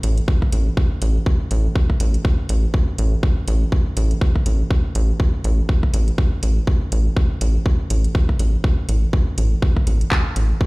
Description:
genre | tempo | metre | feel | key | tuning
minimal techno | 122 BPM | 4/4 | swing 58% on 16ths | unclear | A4 = 440 Hz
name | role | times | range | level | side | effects
rubbery square bass | bass | 0.0-10.5 s | A1 | -17 LUFS | equal | sidechain pumping
booming analog drum machine | drums | 0.0-10.5 s | handclaps, hi-hat | -29 LUFS | right 1 dB | overdrive
electronic kick drum | drums | 0.3-10.7 s | none | -17 LUFS | equal | overdrive
room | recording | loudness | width
little or no reverb | played on a big sound system in a bare room, large studio reverb | -16 LUFS | side -25 dB against mid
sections
0.0-10.7 A section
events
none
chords
none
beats
0.28 | 0.77 1.26 1.76 2.25 | 2.74 3.23 3.72 4.21 | 4.71 5.20 5.69 6.18 | 6.67 7.17 7.66 8.15 | 8.64 9.13 9.62 10.12 | 10.61

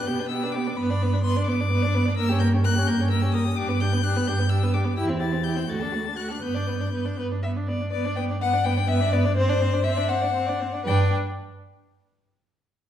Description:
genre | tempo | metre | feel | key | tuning
quick classical-period movement for string quartet | 77-86 BPM (dotted quarters) | 6/8 | straight | G major | A4 = 440 Hz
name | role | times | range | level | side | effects
rich violin | melody | 0.0-11.1 s | C5 to A6 | -28 LUFS | left 6 dB | none
rich violin | second line | 0.0-11.1 s | E4 to E5 | -31 LUFS | left 2 dB | none
rich viola | accompaniment | 0.0-11.1 s | A3 to E4 | -28 LUFS | right 2 dB | none
warm cello | bass | 0.1-11.1 s | D2 to B2 | -25 LUFS | right 1 dB | none
room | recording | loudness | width
wet recital hall reverb, RT60 1.2 s | heard from further back in the room | -21 LUFS | side -10 dB against mid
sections
0.0-7.9 A section; 7.9-10.8 B section; 10.8-12.3 C section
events
none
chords
0.0 G/B; 0.8 G; 2.2 Gdim; 3.6 G; 5.0 C/E; 5.7 D; 6.4 G; 9.4 D7/G; 10.8 G5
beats
0.07 | 0.78 1.48 | 2.18 2.88 | 3.58 4.27 | 4.98 5.69 | 6.43 7.18 | 7.92 8.64 | 9.36 10.09 | 10.85

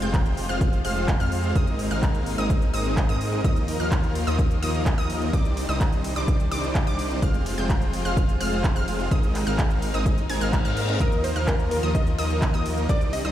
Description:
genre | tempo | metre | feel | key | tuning
EDM, festival progressive house | 127 BPM | 4/4 | straight | unclear | A4 = 445 Hz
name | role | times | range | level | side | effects
rich chamber string section | sustained chords | 0.0-13.3 s | C3 to F4 | -35 LUFS | left 1 dB | sidechain pumping
wide unison pluck | arpeggios | 0.0-13.3 s | D6 to Ab6 | -34 LUFS | equal | sidechain pumping, ping-pong delay
big supersaw lead | riff | 0.0-13.3 s | F3 to Ab5 | -28 LUFS | equal | sidechain pumping, ping-pong delay
detuned saw bass | bass | 0.0-13.3 s | F1 to Ab2 | -28 LUFS | equal | sidechain pumping
big-room dance drum kit | drums | 0.0-13.3 s | handclaps, hi-hat, ride cymbal | -34 LUFS | right 1 dB | overdrive, small room ambience
electronic kick drum | drums | 0.1-13.0 s | none | -22 LUFS | equal | small room ambience
reverse cymbal | sound effects | 10.5-11.0 s | none | -34 LUFS | left 5 dB | none
plucky unison lead | melody | 11.0-13.3 s | Bb4 to Eb5 | -29 LUFS | equal | ping-pong delay
room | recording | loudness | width
light reverb | played on a big sound system in a bare room, large studio reverb | -21 LUFS | side -12 dB against mid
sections
0.0-13.3 A section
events
reverse cymbal 10.5-11.0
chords
0.0 Fm; 1.6 Abadd9; 3.4 Ebsus2; 5.3 Cmadd9; 7.2 Fm; 9.1 Abadd9; 11.0 Ebsus2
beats
0.14 0.61 1.08 | 1.55 2.03 2.50 2.97 | 3.44 3.92 4.39 4.86 | 5.33 5.81 6.28 6.75 | 7.22 7.70 8.17 8.64 | 9.11 9.59 10.06 10.53 | 11.00 11.48 11.95 12.42 | 12.89

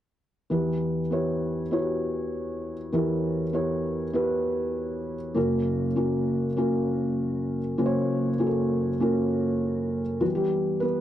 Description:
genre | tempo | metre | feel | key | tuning
pop | 99 BPM | 4/4 | straight | unclear | A4 = 435 Hz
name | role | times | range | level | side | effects
felt-muted upright piano | accompaniment | 0.5-11.0 s | F#1 to C#5 | -24 LUFS | equal | none
room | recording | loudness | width
wet booth ambience, RT60 0.2 s | dry, close 1970s-style studio recording | -24 LUFS | side -12 dB against mid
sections
0.5-10.2 A section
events
none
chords
0.5 Em; 5.4 F#; 10.2 Em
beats
| 0.51 1.11 1.72 2.33 | 2.93 3.54 4.14 4.75 | 5.36 5.96 6.57 7.18 | 7.78 8.39 9.00 9.60 | 10.21 10.81

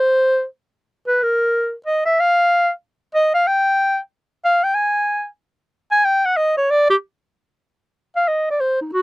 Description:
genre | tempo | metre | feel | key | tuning
jazz | 186 BPM | 4/4 | swing 64% on 8ths | Ab major | A4 = 441 Hz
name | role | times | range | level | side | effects
clear clarinet | solo | 0.0-9.0 s | Eb4 to Ab5 | -15 LUFS | equal | none
room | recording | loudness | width
light reverb | dry, close 1970s-style studio recording | -16 LUFS | side -22 dB against mid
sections
0.0-7.3 A section; 7.3-9.0 B section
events
clarinet solo 0.0-7.3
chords
none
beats
0.21 0.53 | 0.85 1.18 1.50 1.82 | 2.15 2.47 2.79 3.11 | 3.44 3.76 4.08 4.40 | 4.73 5.05 5.37 5.69 | 6.01 6.33 6.66 6.98 | 7.30 7.62 7.94 8.26 | 8.59 8.91

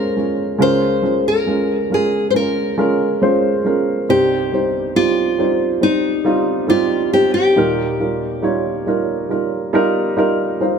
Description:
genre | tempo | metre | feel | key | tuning
pop | 69 BPM | 4/4 | straight | unclear | A4 = 440 Hz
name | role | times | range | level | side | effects
nylon-string guitar | melody | 0.0-10.6 s | Eb4 to C5 | -18 LUFS | left 1 dB | none
dark upright piano | accompaniment | 0.0-10.8 s | C2 to F5 | -17 LUFS | right 2 dB | none
room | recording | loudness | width
moderate lush hall reverb, RT60 2.4 s | none | -15 LUFS | side -6 dB against mid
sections
0.0-10.8 A section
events
upright piano fill 9.3-10.8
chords
0.0 Dbmaj7; 0.6 Bbm7/Db; 4.1 Cm; 7.6 Ebadd9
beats
| 0.60 1.47 2.34 3.21 | 4.08 4.95 5.82 6.69 | 7.56 8.43 9.30 10.17

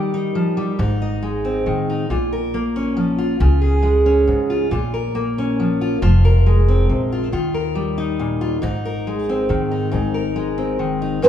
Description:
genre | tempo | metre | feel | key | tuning
folk | 46 BPM (dotted quarters) | 6/8 | straight | Ab major | A4 = 441 Hz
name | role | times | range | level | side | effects
fingerpicked steel-string acoustic guitar | accompaniment | 0.0-11.3 s | Ab2 to Eb5 | -19 LUFS | left 1 dB | none
upright bass | bass | 0.8-11.2 s | F1 to Db3 | -20 LUFS | equal | none
baroque flute | second line | 11.2-11.3 s | C5 | -7 LUFS | right 2 dB | none
room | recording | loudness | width
moderate large studio reverb, RT60 1.4 s | band playing live in one room | -17 LUFS | side -10 dB against mid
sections
0.0-11.2 A section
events
none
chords
0.0 Eb; 0.8 Ab; 2.1 Bbm; 3.4 Db; 4.7 Bbm; 6.0 Fm; 7.3 Ebadd9; 8.6 Abadd9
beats
| 0.79 2.09 | 3.40 4.71 | 6.01 7.32 | 8.63 9.94 | 11.24

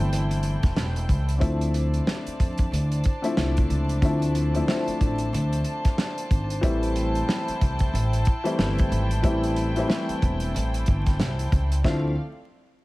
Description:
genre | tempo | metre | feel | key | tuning
hip hop, boom-bap hip-hop | 92 BPM | 4/4 | swing 61% on 16ths | D minor | A4 = 440 Hz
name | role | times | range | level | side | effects
dark upright piano | accompaniment | 0.0-12.1 s | D3 to E4 | -28 LUFS | left 2 dB | cassette tape, high-pass filter, low-pass filter
warm studio string section | sustained chords | 0.0-12.1 s | C4 to A5 | -33 LUFS | equal | high-pass filter, low-pass filter
upright bass | bass | 0.0-12.1 s | E1 to F2 | -25 LUFS | equal | none
warm soul drum kit | drums | 0.1-12.0 s | hi-hat, kick drum, snare drum | -25 LUFS | equal | none
room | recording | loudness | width
small room ambience | vinyl crackle | -22 LUFS | side -20 dB against mid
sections
0.0-1.4 A section; 1.4-11.8 B section; 11.8-12.8 C section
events
none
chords
0.0 Am7; 1.4 Dm7; 6.6 Am7; 11.8 Dm7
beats
0.11 0.76 | 1.41 2.06 2.72 3.37 | 4.02 4.67 5.32 5.98 | 6.63 7.28 7.93 8.59 | 9.24 9.89 10.54 11.19 | 11.85

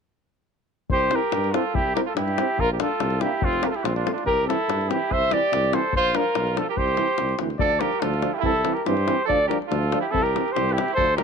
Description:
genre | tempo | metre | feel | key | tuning
balkan folk, Balkan brass band | 143 BPM | 2/4 | swing 53% on 16ths | C mixolydian | A4 = 440 Hz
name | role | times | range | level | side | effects
clear flugelhorn | melody | 0.9-11.2 s | F4 to E5 | -24 LUFS | left 2 dB | none
clear trumpet | second line | 0.9-11.2 s | C4 to C5 | -27 LUFS | right 13 dB | none
warm tuba | bass | 0.9-11.2 s | F1 to G2 | -28 LUFS | equal | none
davul | percussion | 0.9-11.2 s | none | -29 LUFS | left 5 dB | none
clear euphonium | accompaniment | 1.1-11.2 s | C4 to E4 | -32 LUFS | left 14 dB | none
warm trombone | accompaniment | 1.1-11.2 s | E3 to C4 | -31 LUFS | right 15 dB | none
room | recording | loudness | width
light reverb | 1960s-style stereo with parts hard left and right | -20 LUFS | side -6 dB against mid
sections
0.9-7.6 A section; 7.6-11.2 B section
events
none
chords
0.9 C; 2.6 Bb; 3.4 F; 4.3 C; 5.9 Bb; 6.8 C; 7.6 Dm; 8.4 C; 9.3 Dm; 10.1 C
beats
| 0.90 1.32 | 1.74 2.16 | 2.58 3.00 | 3.42 3.84 | 4.25 4.67 | 5.09 5.51 | 5.93 6.35 | 6.77 7.19 | 7.61 8.03 | 8.45 8.86 | 9.28 9.70 | 10.12 10.54 | 10.96

